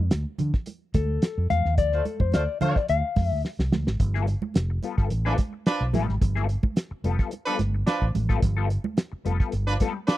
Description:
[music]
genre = funk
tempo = 108 BPM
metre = 4/4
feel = straight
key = unclear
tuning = A4 = 441 Hz
[part]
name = mellow electric guitar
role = accompaniment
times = 0.0-10.1 s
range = G3 to F5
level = -28 LUFS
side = left 8 dB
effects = wah
[part]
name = fingered electric bass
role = bass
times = 0.0-9.8 s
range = F1 to D3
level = -25 LUFS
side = equal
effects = none
[part]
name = cloth-damped thuddy drum kit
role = drums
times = 0.1-10.2 s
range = hi-hat, kick drum, snare drum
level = -23 LUFS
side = equal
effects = none
[part]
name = congas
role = percussion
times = 0.4-9.9 s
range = none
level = -33 LUFS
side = right 6 dB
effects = none
[part]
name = warm horn section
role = second line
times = 1.9-10.2 s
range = F3 to C5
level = -28 LUFS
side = right 3 dB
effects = none
[sound]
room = studio reverb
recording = dry, close 1970s-style studio recording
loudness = -22 LUFS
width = side -15 dB against mid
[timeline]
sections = 0.0-4.0 A section; 4.0-10.2 B section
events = clean electric guitar solo 0.0-4.0; band accent 1.8-4.0; drum fill 3.4-4.0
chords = 0.0 Dm; 4.0 G9

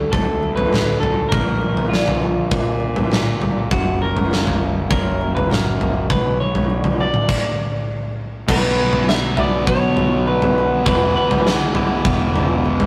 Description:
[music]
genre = quiet-loud alternative rock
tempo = 100 BPM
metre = 4/4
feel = straight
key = unclear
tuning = A4 = 441 Hz
[part]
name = picked acoustic archtop guitar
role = arpeggios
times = 0.0-12.9 s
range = D2 to B4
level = -31 LUFS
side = equal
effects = none
[part]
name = fuzz fingered electric bass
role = bass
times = 0.0-12.9 s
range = E1 to Bb2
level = -25 LUFS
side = equal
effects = overdrive
[part]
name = electric guitar through a small old amp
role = melody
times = 0.1-12.9 s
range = F4 to E5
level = -25 LUFS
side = equal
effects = tape echo
[part]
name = huge arena drum kit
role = drums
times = 0.1-12.9 s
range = crash cymbal, kick drum, snare drum, toms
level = -22 LUFS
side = equal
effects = none
[part]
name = distorted electric guitar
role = riff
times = 8.5-12.9 s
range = E2 to B3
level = -24 LUFS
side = equal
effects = overdrive
[sound]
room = light reverb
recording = rough rehearsal-room recording, tube saturation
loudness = -18 LUFS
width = mono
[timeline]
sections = 0.0-8.5 A section; 8.5-12.9 B section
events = stop 7.3-8.5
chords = 0.0 D; 1.3 Bb; 3.7 F#; 6.1 Bm; 10.9 E

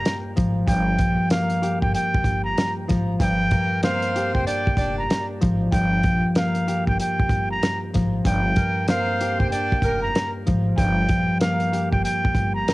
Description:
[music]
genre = hip hop, boom-bap hip-hop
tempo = 95 BPM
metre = 4/4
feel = swing 62% on 16ths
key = G minor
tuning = A4 = 440 Hz
[part]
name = trumpet with straight mute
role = melody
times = 0.0-12.7 s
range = F5 to Bb5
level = -25 LUFS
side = right 1 dB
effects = high-pass filter, low-pass filter, cassette tape
[part]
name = concert harp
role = accompaniment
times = 0.0-12.7 s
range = G2 to G4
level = -24 LUFS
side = left 1 dB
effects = high-pass filter, low-pass filter, cassette tape
[part]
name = warm soul drum kit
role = drums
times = 0.1-12.7 s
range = hi-hat, kick drum, snare drum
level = -23 LUFS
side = equal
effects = cassette tape
[part]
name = upright bass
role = bass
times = 0.4-12.6 s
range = F1 to Bb1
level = -27 LUFS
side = equal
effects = none
[part]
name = edgy saxophone section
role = stabs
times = 3.5-10.1 s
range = Bb3 to D5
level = -29 LUFS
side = right 1 dB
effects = high-pass filter, low-pass filter, cassette tape, analog delay
[sound]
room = studio reverb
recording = home recording on cassette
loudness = -19 LUFS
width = side -20 dB against mid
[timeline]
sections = 0.0-12.7 A section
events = none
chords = 0.0 Gm7

